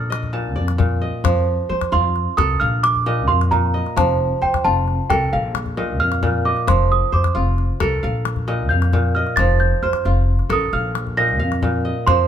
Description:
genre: west african traditional, West African string and xylophone music.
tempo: 89 BPM (dotted quarters).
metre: 12/8.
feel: straight.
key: unclear.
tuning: A4 = 442 Hz.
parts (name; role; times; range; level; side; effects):
small celesta; melody; 0.0-12.3 s; F5 to Bb6; -20 LUFS; right 3 dB; none.
kora; arpeggios; 0.0-12.3 s; Bb2 to A5; -22 LUFS; right 1 dB; none.
upright bass; bass; 0.0-12.3 s; F1 to F3; -20 LUFS; equal; none.
calabash; percussion; 0.1-12.2 s; none; -24 LUFS; left 5 dB; none.
room: moderate large studio reverb, RT60 1.4 s.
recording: band playing live in one room.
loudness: -16 LUFS.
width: side -9 dB against mid.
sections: 0.0-1.2 A section; 1.2-12.1 B section.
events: celesta solo 1.2-12.1.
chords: 0.0 Bb; 1.2 F; 2.6 Bb; 4.0 F; 5.3 Bb5; 6.7 F; 8.0 Bb5; 9.4 F; 10.7 Bb5.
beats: 0.56 | 1.24 1.92 2.60 3.28 | 3.96 4.64 5.32 6.00 | 6.67 7.35 8.03 8.70 | 9.38 10.05 10.73 11.40 | 12.07.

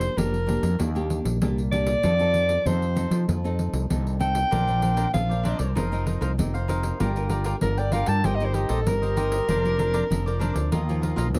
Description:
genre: samba and choro.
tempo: 97 BPM.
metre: 4/4.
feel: straight.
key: Bb major.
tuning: A4 = 440 Hz.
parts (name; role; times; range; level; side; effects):
mellow soprano saxophone; melody; 0.0-10.7 s; G4 to A5; -28 LUFS; equal; none.
nylon-string guitar; accompaniment; 0.0-11.4 s; Bb2 to Bb4; -33 LUFS; equal; none.
fretless electric bass; bass; 0.0-11.4 s; F1 to F3; -28 LUFS; equal; none.
pandeiro; percussion; 0.0-11.4 s; none; -33 LUFS; equal; none.
cavaquinho; accompaniment; 4.5-11.3 s; D4 to G5; -34 LUFS; equal; none.
room: light reverb.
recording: close, detailed microphones.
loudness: -24 LUFS.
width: mono.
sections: 0.0-11.4 A section.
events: soprano saxophone solo 0.0-11.4.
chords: 0.0 Bb6/F; 0.8 Ebmaj7; 2.0 F7; 4.5 Bbadd9; 5.8 F7sus4; 7.0 Gm7; 8.2 Eb6/G; 9.5 Bbadd9/F; 10.7 Ebsus2.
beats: 0.17 0.79 1.41 | 2.03 2.65 3.27 3.90 | 4.52 5.14 5.76 6.38 | 7.00 7.62 8.24 8.86 | 9.48 10.10 10.72 11.34.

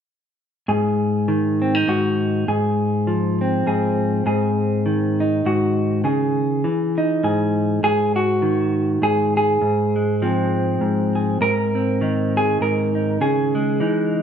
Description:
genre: folk, solo fingerstyle acoustic guitar.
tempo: 101 BPM.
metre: 3/4.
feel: swing 56% on 8ths.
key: Ab mixolydian.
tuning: A4 = 442 Hz.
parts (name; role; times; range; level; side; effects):
clean electric guitar; solo; 0.7-14.2 s; Ab2 to Bb4; -17 LUFS; equal; none.
room: moderate scoring stage reverb, RT60 1.5 s.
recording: minimal, uncompressed stereo recording.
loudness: -17 LUFS.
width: side -8 dB against mid.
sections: 0.7-7.8 A section; 7.8-14.2 B section.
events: none.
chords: 0.7 Ab5; 2.5 Fm/Ab; 4.3 Ab; 6.1 Dbmadd9; 7.8 Ab5; 9.6 Fm/Ab; 11.4 Ab; 13.2 Dbmadd9.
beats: | 0.68 1.28 1.88 | 2.47 3.07 3.67 | 4.26 4.86 5.46 | 6.05 6.65 7.25 | 7.84 8.44 9.03 | 9.63 10.23 10.82 | 11.42 12.01 12.61 | 13.21 13.80.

